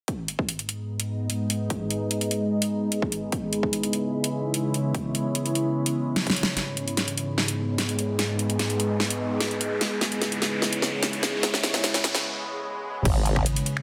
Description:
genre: heavy wobble dubstep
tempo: 148 BPM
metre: 4/4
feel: half-time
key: G# minor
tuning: A4 = 440 Hz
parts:
  - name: evolving wavetable pad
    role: sustained chords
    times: 0.6-13.8 s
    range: G#2 to D#5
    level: -30 LUFS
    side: equal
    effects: phaser, built-in reverb, sidechain pumping
  - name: dubstep drum kit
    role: drums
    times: 0.1-13.8 s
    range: crash cymbal, finger snaps, hi-hat, snare drum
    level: -29 LUFS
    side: equal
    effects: high-pass filter on hats, studio reverb, high-pass filter on snare, high-pass filter on cymbals
  - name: electronic kick drum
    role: drums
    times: 0.1-6.3, 13.1-13.4 s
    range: none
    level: -31 LUFS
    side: equal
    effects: high-pass filter on kick, studio reverb
  - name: deep dark ambient pad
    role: texture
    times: 0.9-12.2 s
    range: E4 to B5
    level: -35 LUFS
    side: equal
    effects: chorus, built-in reverb, sidechain pumping
  - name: riser and swell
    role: sound effects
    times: 7.6-13.1 s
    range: none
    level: -36 LUFS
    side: equal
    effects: none
  - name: formant-sweep wobble bass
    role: bass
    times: 13.1-13.4 s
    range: G#1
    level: -26 LUFS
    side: equal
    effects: chorus, overdrive
room: moderate lush hall reverb, RT60 1.8 s, digital ambience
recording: dense, heavily limited modern master, high-pass filter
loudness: -26 LUFS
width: mono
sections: 0.1-6.6 A section; 6.6-13.1 B section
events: drum fill 6.2-6.6, 6.6-12.2; build-up 6.6-13.1; filter sweep on ambient pad 6.6-13.1; riser 7.6-12.2; break 12.2-13.1; swell 12.2-13.1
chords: 0.1 G#m; 3.3 C#m7; 6.6 G#m; 9.8 C#m7; 13.1 G#m

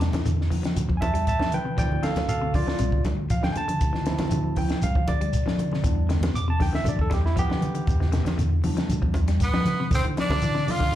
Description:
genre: afrobeat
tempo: 118 BPM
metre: 4/4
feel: straight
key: D dorian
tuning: A4 = 440 Hz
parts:
  - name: barky tine electric piano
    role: accompaniment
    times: 0.0-9.9 s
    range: F3 to D6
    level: -29 LUFS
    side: right 2 dB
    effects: plate reverb, slapback echo
  - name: semi-hollow electric guitar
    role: arpeggios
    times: 0.0-11.0 s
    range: C3 to G3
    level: -31 LUFS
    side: left 4 dB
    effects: slapback echo, plate reverb
  - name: fingered electric bass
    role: bass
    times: 0.0-11.0 s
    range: C2 to E3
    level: -26 LUFS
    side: equal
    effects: none
  - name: compact cocktail drum kit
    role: drums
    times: 0.0-10.9 s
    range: hi-hat, kick drum, snare drum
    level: -27 LUFS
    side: equal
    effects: none
  - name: shekere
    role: percussion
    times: 0.0-10.8 s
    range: none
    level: -29 LUFS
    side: right 1 dB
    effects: none
  - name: congas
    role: percussion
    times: 0.1-10.8 s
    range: none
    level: -31 LUFS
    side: right 1 dB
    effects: none
  - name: raspy tenor saxophone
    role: melody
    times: 9.4-11.0 s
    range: B3 to F4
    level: -27 LUFS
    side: equal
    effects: plate reverb, slapback echo
  - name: bright trumpet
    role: second line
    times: 9.4-11.0 s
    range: B4 to F5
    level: -32 LUFS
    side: right 5 dB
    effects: plate reverb, slapback echo
room: light reverb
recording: live gig heard through the venue's PA, club reverb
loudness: -22 LUFS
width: side -12 dB against mid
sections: 0.0-9.9 A section; 9.9-11.0 B section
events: tine electric piano solo 0.0-9.9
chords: 0.0 Em7; 1.8 Dm9; 5.8 Em7; 9.9 Dm9

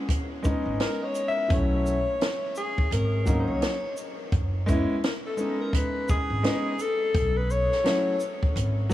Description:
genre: hip hop, jazz-hop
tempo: 85 BPM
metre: 4/4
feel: swing 60% on 16ths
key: unclear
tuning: A4 = 440 Hz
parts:
  - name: clear concert grand piano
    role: accompaniment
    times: 0.0-8.9 s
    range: F#3 to E4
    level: -30 LUFS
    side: equal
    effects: none
  - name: compact cocktail drum kit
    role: drums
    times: 0.1-8.9 s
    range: hi-hat, kick drum, shaker, snare drum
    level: -28 LUFS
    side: equal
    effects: none
  - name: upright bass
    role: bass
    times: 0.7-8.9 s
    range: F#1 to B#1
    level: -27 LUFS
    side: equal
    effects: none
  - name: breathy alto saxophone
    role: melody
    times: 0.8-8.2 s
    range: G#4 to E5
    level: -28 LUFS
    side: left 2 dB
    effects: analog delay
room: light reverb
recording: vinyl crackle, small room ambience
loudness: -23 LUFS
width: side -14 dB against mid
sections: 0.0-8.9 A section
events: alto saxophone solo 0.0-8.9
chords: 0.0 F#sus4 (rootless); 1.5 B9sus4; 2.9 G#9sus4; 4.3 F#sus4; 7.1 B9sus4

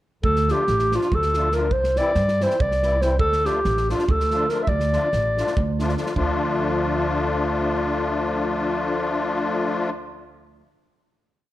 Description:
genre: balkan folk, Balkan wedding band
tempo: 283 BPM (eighths)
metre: 7/8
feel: straight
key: D minor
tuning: A4 = 441 Hz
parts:
  - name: mellow clarinet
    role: melody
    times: 0.2-5.8 s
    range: F4 to E5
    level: -21 LUFS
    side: equal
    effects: none
  - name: upright bass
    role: bass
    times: 0.2-10.6 s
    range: A1 to G2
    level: -25 LUFS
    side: right 1 dB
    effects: none
  - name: natural country drum kit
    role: percussion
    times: 0.2-6.4 s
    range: kick drum, snare drum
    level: -28 LUFS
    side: right 1 dB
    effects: none
  - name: musette accordion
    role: accompaniment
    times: 0.5-9.9 s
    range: E3 to F4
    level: -24 LUFS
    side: left 2 dB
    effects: none
room: light reverb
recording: none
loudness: -19 LUFS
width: side -15 dB against mid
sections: 0.2-6.2 A section; 6.2-9.1 final chord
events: none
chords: 0.2 Dm; 1.7 C; 3.2 Dm

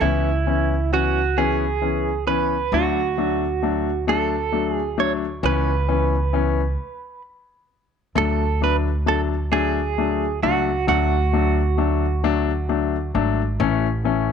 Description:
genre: six-eight pop ballad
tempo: 44 BPM (dotted quarters)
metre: 6/8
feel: straight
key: unclear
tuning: A4 = 441 Hz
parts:
  - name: direct-recorded clean electric guitar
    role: melody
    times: 0.0-13.1 s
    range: E4 to C#5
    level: -23 LUFS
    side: right 9 dB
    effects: tremolo
  - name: warm grand piano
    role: accompaniment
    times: 0.0-14.3 s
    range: E3 to D4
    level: -23 LUFS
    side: left 12 dB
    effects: none
  - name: upright bass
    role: bass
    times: 0.0-14.3 s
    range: G#1 to D2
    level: -23 LUFS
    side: right 1 dB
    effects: none
room: moderate spring reverb, RT60 1.3 s, small room ambience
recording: 1960s-style stereo with parts hard left and right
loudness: -19 LUFS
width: side -7 dB against mid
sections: 0.0-8.2 A section; 8.2-14.3 B section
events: stop 6.8-8.2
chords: 0.0 C#m7; 2.7 D; 5.4 C#m7; 8.2 D; 13.6 A

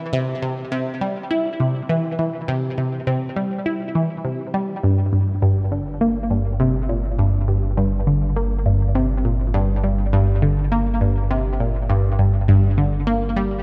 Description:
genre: ambient, sequencer-driven space music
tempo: 102 BPM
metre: 4/4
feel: straight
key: unclear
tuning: A4 = 438 Hz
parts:
  - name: analog pluck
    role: riff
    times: 0.1-13.5 s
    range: G2 to E4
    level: -21 LUFS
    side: equal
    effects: chorus, phaser, tape echo
  - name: warm sub bass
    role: bass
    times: 4.8-13.6 s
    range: G1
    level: -26 LUFS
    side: equal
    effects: none
room: wet plate reverb, RT60 3.3 s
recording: dark, warm production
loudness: -20 LUFS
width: mono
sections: 0.0-4.8 A section; 4.8-13.6 B section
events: none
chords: 0.0 C; 4.8 N.C.

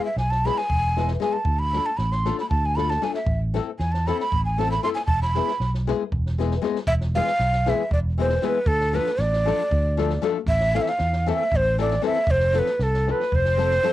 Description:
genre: balkan folk, Balkan wedding band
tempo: 233 BPM (eighths)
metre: 7/8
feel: straight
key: E phrygian dominant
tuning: A4 = 440 Hz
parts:
  - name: breathy ney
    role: melody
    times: 0.0-13.9 s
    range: A4 to C6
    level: -23 LUFS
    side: right 1 dB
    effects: cassette tape
  - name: nylon-string guitar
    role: accompaniment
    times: 0.0-13.9 s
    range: E3 to A4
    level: -26 LUFS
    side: left 9 dB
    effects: cassette tape
  - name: fingered electric bass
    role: bass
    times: 0.2-13.8 s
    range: E1 to E2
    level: -24 LUFS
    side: right 1 dB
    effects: none
  - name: compact cocktail drum kit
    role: percussion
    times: 0.2-13.9 s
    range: kick drum, snare drum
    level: -30 LUFS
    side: right 1 dB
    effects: none
  - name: accordion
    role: second line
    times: 13.1-13.9 s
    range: B4 to C5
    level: -30 LUFS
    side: right 9 dB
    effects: cassette tape
room: light reverb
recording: home recording on cassette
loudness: -20 LUFS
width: side -14 dB against mid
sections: 0.0-6.9 A section; 6.9-13.9 B section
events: ney solo 0.0-6.9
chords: 0.0 E; 1.5 Dm; 3.3 Am; 5.1 E; 8.7 Dm; 10.5 Am; 12.3 F

